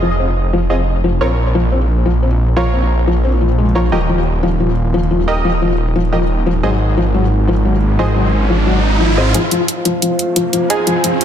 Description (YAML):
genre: dark technical drum and bass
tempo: 177 BPM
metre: 4/4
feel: straight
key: F minor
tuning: A4 = 440 Hz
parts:
  - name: dark analog pad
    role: sustained chords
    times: 0.0-11.2 s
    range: Ab3 to F5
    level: -25 LUFS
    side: right 2 dB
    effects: chorus
  - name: felt-muted upright piano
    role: arpeggios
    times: 0.0-11.1 s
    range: F3 to C4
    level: -18 LUFS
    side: left 4 dB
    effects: low-pass filter, ping-pong delay
  - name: band-passed chord stab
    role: stabs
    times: 0.0-11.2 s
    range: Eb4 to Eb5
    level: -21 LUFS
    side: right 3 dB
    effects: chorus, ping-pong delay
  - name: snarling distorted saw bass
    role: bass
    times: 0.0-9.3 s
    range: Eb1 to Bb1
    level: -15 LUFS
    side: equal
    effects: distortion, tube saturation
  - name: riser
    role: sound effects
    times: 7.5-11.2 s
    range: none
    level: -22 LUFS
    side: right 2 dB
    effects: none
  - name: electronic hi-hat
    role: drums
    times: 9.3-11.2 s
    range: none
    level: -18 LUFS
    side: right 2 dB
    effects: overdrive, high-pass filter on hats, high-pass filter on snare, high-pass filter on toms, high-pass filter on cymbals, high-pass filter on room
room: light reverb, digital ambience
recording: dense, heavily limited modern master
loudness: -12 LUFS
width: side -9 dB against mid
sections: 0.0-9.3 A section; 9.3-11.2 B section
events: filter sweep on analog synth pad 0.0-9.3; riser 7.5-9.3, 9.3-11.2; build-up 9.3-11.2; filter sweep on felt piano 9.3-11.2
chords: 0.0 Fm7; 1.2 Bbm; 3.9 Eb; 6.6 Ab; 9.3 Fm7